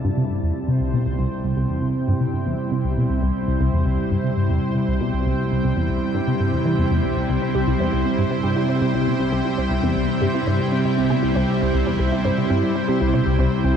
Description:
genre	ambient, sequencer-driven space music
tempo	118 BPM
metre	4/4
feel	straight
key	unclear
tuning	A4 = 439 Hz
part	lush unison pad	sustained chords	0.0-13.8 s	C3 to A5	-21 LUFS	right 1 dB	chorus
part	tight sequenced synth	riff	0.0-13.7 s	C2 to G3	-22 LUFS	equal	chorus, ping-pong delay
part	warbly dusty pluck	arpeggios	7.4-13.8 s	C4 to C5	-29 LUFS	equal	chorus, auto-pan, cassette tape, ping-pong delay
room	wet huge ambient reverb, RT60 8.2 s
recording	dark, warm production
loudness	-18 LUFS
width	side -8 dB against mid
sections	0.0-13.8 A section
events	none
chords	0.0 C

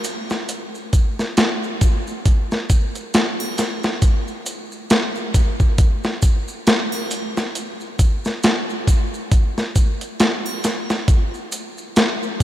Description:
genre	trip hop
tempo	68 BPM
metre	4/4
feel	swing 58% on 16ths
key	none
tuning	none
part	dusty soul sampler-style drum kit	drums	0.0-12.4 s	hi-hat, kick drum, snare drum	-17 LUFS	equal	overdrive
part	maracas and triangle	percussion	0.0-12.4 s	none	-34 LUFS	right 2 dB	none
room	moderate huge ambient reverb, RT60 4.6 s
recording	dreamy mix soaked in reverb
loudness	-17 LUFS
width	side -13 dB against mid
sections	0.0-12.4 A section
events	none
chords	none

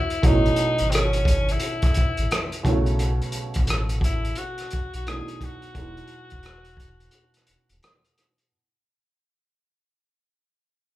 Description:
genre	R&B, neo-soul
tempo	87 BPM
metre	4/4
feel	swing 62% on 16ths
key	unclear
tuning	A4 = 439 Hz
part	bright tenor saxophone	melody	0.0-7.8 s	B#3 to G#4	-28 LUFS	left 1 dB	none
part	warm baby grand piano	accompaniment	0.0-8.5 s	B2 to D#4	-27 LUFS	right 2 dB	none
part	crunchy breakbeat drum kit	drums	0.1-8.5 s	hi-hat, kick drum, rim click	-24 LUFS	equal	none
part	sub bass with octave	bass	0.2-7.8 s	D#1 to B1	-26 LUFS	equal	none
room	moderate large studio reverb, RT60 1.1 s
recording	band playing live in one room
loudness	-21 LUFS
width	side -16 dB against mid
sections	0.0-8.5 A section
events	fade-out 0.0-8.5; break 7.1-8.5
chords	0.2 A69; 2.6 B9; 5.8 Emaj9

